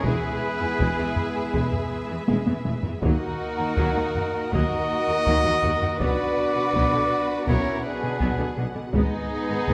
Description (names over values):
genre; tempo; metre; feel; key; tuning
cinematic, epic orchestral film score; 81 BPM; 4/4; straight; Eb phrygian; A4 = 440 Hz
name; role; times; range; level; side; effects
rich symphonic violin section; melody; 0.0-9.7 s; Eb4 to B4; -35 LUFS; equal; none
rich symphonic violin section; second line; 0.0-9.7 s; Cb4 to Gb4; -36 LUFS; equal; none
clear symphonic viola section; accompaniment; 0.0-9.7 s; D3 to B3; -37 LUFS; equal; none
mellow French horn section; sustained chords; 0.0-9.7 s; Ab3 to Eb4; -36 LUFS; equal; none
rich studio string section; sustained chords; 0.0-9.7 s; G#3 to Gb5; -35 LUFS; equal; none
warm trumpet; stabs; 0.0-9.7 s; Ab4 to Eb5; -29 LUFS; equal; none
rich studio cello section; bass; 0.0-9.7 s; Eb2 to B2; -36 LUFS; equal; none
taiko ensemble; drums; 0.0-9.7 s; none; -30 LUFS; equal; none
dark tuba; bass; 0.1-9.7 s; E1 to Eb2; -34 LUFS; equal; none
rich studio double bass section; bass; 0.1-9.7 s; E1 to Eb2; -34 LUFS; equal; none
room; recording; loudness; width
wet scoring stage reverb, RT60 1.5 s; none; -24 LUFS; mono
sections
0.0-9.7 A section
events
drum fill 2.3-3.0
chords
0.0 E; 3.0 Ebm; 6.0 Bm; 8.9 Abm